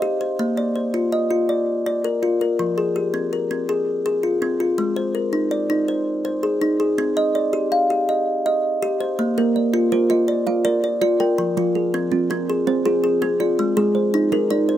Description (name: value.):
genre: southern african traditional.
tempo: 109 BPM (dotted quarters).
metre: 12/8.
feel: straight.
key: Bb mixolydian.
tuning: A4 = 440 Hz.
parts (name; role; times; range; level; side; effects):
kalimba; arpeggios; 0.0-14.8 s; F3 to F5; -19 LUFS; left 1 dB; none.
kalimba; arpeggios; 9.4-14.8 s; F3 to G5; -22 LUFS; right 8 dB; slapback echo.
room: light reverb.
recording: recorded outdoors, with no room sound.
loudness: -18 LUFS.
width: side -11 dB against mid.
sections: 0.0-9.2 A section; 9.2-14.8 A section.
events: none.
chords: 0.4 Bb; 2.6 Fm; 4.8 Ab; 7.0 Cm; 9.2 Bb; 11.4 Fm; 13.6 Ab.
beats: | 0.40 0.95 1.50 2.04 | 2.59 3.14 3.69 4.24 | 4.79 5.34 5.89 6.44 | 6.99 7.54 8.09 8.64 | 9.19 9.74 10.29 10.84 | 11.39 11.94 12.49 13.04 | 13.59 14.14 14.69.